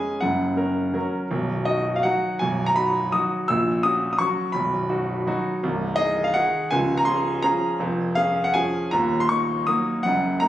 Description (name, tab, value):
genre	classical, piano waltz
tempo	154-179 BPM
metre	3/4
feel	rubato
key	Db major from 5.6 s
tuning	A4 = 440 Hz
part	clear concert grand piano	solo	0.0-10.5 s	B0 to E6	-20 LUFS	equal	none
room	moderate recital hall reverb, RT60 1.5 s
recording	recorded on a phone in the room, club reverb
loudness	-20 LUFS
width	side -13 dB against mid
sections	0.0-10.5 A section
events	none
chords	0.2 F#; 1.3 B; 3.5 F#7/A#; 4.5 B; 5.6 Ab7/C; 6.7 Db; 7.8 Db/F; 8.9 Ebm